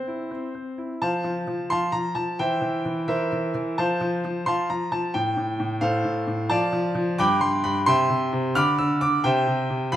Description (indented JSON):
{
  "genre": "classical-period piano sonatina",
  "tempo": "87 BPM (dotted quarters)",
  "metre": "6/8",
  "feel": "straight",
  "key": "F major, C major from 6.5 s",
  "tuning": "A4 = 439 Hz",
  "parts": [
    { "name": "clear baby grand piano", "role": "solo", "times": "0.0-10.0 s", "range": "G2 to F6", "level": "-22 LUFS", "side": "equal", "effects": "none" }
  ],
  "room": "moderate recital hall reverb, RT60 1.5 s",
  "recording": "none",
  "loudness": "-22 LUFS",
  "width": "side -12 dB against mid",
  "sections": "0.0-1.0 A section; 1.0-10.0 B section",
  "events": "none",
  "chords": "0.0 C; 1.0 F; 2.4 C7/E; 3.8 F; 5.1 F/A; 6.5 Dm/F; 7.2 G; 7.9 C; 8.6 Dm69; 9.2 C",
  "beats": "0.30 | 1.01 1.70 | 2.39 3.08 | 3.78 4.47 | 5.15 5.83 | 6.51 7.19 | 7.87 8.56 | 9.24 9.94"
}